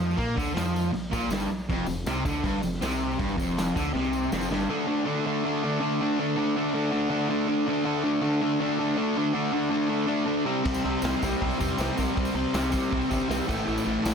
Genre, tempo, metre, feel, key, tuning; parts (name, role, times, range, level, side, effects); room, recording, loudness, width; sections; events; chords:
garage rock duo or trio; 160 BPM; 4/4; straight; D minor; A4 = 440 Hz
fuzz guitar; riff; 0.0-14.1 s; F2 to D4; -25 LUFS; equal; distortion
gritty driven synth bass; bass; 0.0-4.7, 10.7-14.1 s; F1 to Bb2; -34 LUFS; equal
raw garage drum kit; drums; 0.0-4.6, 10.7-14.1 s; crash cymbal, hi-hat, kick drum, snare drum; -32 LUFS; equal; vintage 12-bit sampler grit
tambourine; percussion; 0.1-4.6, 10.7-14.1 s; -44 LUFS; right 2 dB
moderate club reverb, RT60 0.7 s; -24 LUFS; side -6 dB against mid
0.0-4.7 A section; 4.7-14.1 B section
drum fill 3.9-4.7
0.0 Bb5; 1.7 F5; 4.7 D5; 10.5 C5; 13.5 A5